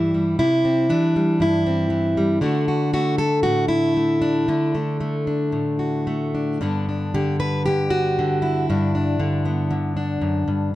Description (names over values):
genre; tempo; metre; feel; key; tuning
folk, solo fingerstyle acoustic guitar; 116 BPM; 4/4; rubato; G major; A4 = 440 Hz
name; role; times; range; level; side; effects
fingerpicked plugged-in steel-string acoustic guitar; solo; 0.0-10.7 s; F#2 to B4; -18 LUFS; equal; none
room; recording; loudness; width
light reverb; dark, warm production; -19 LUFS; side -15 dB against mid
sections
0.0-10.8 A section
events
none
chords
0.0 C; 2.4 D; 6.6 G